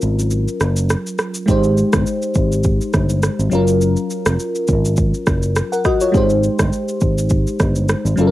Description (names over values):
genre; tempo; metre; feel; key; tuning
afrobeats; 103 BPM; 4/4; swing 55% on 16ths; Ab major; A4 = 441 Hz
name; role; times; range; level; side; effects
bell-like FM electric piano; accompaniment; 0.0-8.3 s; Gb3 to Gb5; -18 LUFS; left 1 dB; chorus, phaser
fingered electric bass; bass; 0.0-8.3 s; F1 to Ab1; -18 LUFS; equal; none
afro-pop drum kit; drums; 0.0-8.3 s; kick drum, rim click, shaker; -19 LUFS; equal; cassette tape
room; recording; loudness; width
little or no reverb; home recording on cassette; -15 LUFS; side -15 dB against mid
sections
0.0-8.3 A section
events
break 0.0-1.5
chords
0.0 Gbmaj7; 1.5 Abmaj7; 3.5 Gbmaj7; 6.1 Abmaj7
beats
0.32 0.90 | 1.48 2.06 2.65 3.23 | 3.81 4.39 4.98 5.56 | 6.14 6.73 7.31 7.89